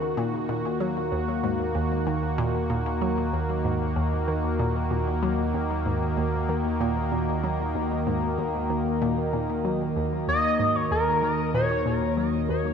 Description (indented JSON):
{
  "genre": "ambient, sequencer-driven space music",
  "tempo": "95 BPM",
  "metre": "4/4",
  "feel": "straight",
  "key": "Eb minor",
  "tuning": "A4 = 439 Hz",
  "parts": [
    { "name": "sweeping resonant pad", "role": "sustained chords", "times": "0.0-12.7 s", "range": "Eb3 to Gb4", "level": "-26 LUFS", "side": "equal", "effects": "chorus, shimmer reverb" },
    { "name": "warm sub bass", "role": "bass", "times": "0.0-12.7 s", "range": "Eb2", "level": "-32 LUFS", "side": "equal", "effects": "none" },
    { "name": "hollow square pluck", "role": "riff", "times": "0.2-12.7 s", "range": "Eb2 to Gb3", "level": "-30 LUFS", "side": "left 1 dB", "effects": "chorus, phaser, cassette tape, ping-pong delay" },
    { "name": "pulse-width lead", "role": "melody", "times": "10.3-12.1 s", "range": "Bb4 to Eb5", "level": "-24 LUFS", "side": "equal", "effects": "chorus, shimmer reverb, ping-pong delay" }
  ],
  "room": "wet spring reverb, RT60 2.2 s",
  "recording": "echo-heavy mix",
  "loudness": "-23 LUFS",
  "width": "side -7 dB against mid",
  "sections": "0.0-12.7 A section",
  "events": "none",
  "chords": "0.0 Ebm"
}